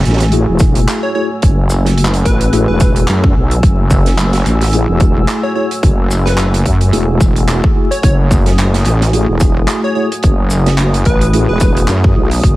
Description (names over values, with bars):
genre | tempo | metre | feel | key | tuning
glitch hop | 109 BPM | 4/4 | swing 57% on 16ths | F# dorian | A4 = 440 Hz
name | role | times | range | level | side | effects
dark analog pad | sustained chords | 0.0-12.6 s | A3 to E6 | -22 LUFS | equal | chorus, sidechain pumping
wobble bass | bass | 0.0-12.6 s | E1 to F#2 | -13 LUFS | equal | chorus, tube saturation
warm soul drum kit | drums | 0.0-12.6 s | handclaps, hi-hat, shaker, snare drum | -21 LUFS | right 2 dB | none
mellow tine electric piano | stabs | 0.3-12.3 s | A3 to G#4 | -19 LUFS | left 1 dB | medium stereo tremolo, sidechain pumping, tape echo
electronic kick drum | drums | 0.6-12.6 s | none | -12 LUFS | equal | overdrive
plucky unison lead | melody | 1.0-11.9 s | B4 to C#5 | -21 LUFS | equal | cassette tape, tape echo
room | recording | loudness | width
studio ambience | vinyl crackle | -10 LUFS | side -17 dB against mid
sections
0.0-12.6 A section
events
none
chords
0.0 F#m9